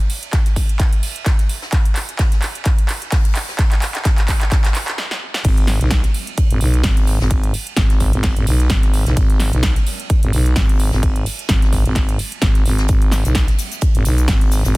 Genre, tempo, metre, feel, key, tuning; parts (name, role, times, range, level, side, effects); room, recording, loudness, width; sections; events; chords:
bass house; 129 BPM; 4/4; swing 56% on 16ths; G# minor; A4 = 438 Hz
big-room dance drum kit; drums; 0.1-14.8 s; crash cymbal, handclaps, hi-hat, shaker, snare drum; -23 LUFS; right 1 dB; high-pass filter on perc, studio reverb, high-pass filter on snare, high-pass filter on hats, high-pass filter on cymbals
soft brush drum kit; drums; 0.1-14.7 s; hi-hat, ride cymbal, snare drum; -32 LUFS; right 3 dB; sidechain pumping on cymbals, high-pass filter on cymbals, studio reverb, sidechain pumping on hats, high-pass filter on hats, soft clipping on snare, high-pass filter on snare, high-pass filter on room
electronic kick drum; drums; 0.3-14.8 s; -16 LUFS; equal; studio reverb
growling FM bass; bass; 5.4-14.8 s; G#1 to B1; -16 LUFS; equal; overdrive, sidechain pumping
small room ambience; dense, heavily limited modern master; -14 LUFS; side -22 dB against mid
0.0-5.4 A section; 5.4-14.8 B section
build-up 0.0-5.4; drum fill 0.0-5.0, 5.0-5.4; stop 5.0-5.4; drop 5.4-14.8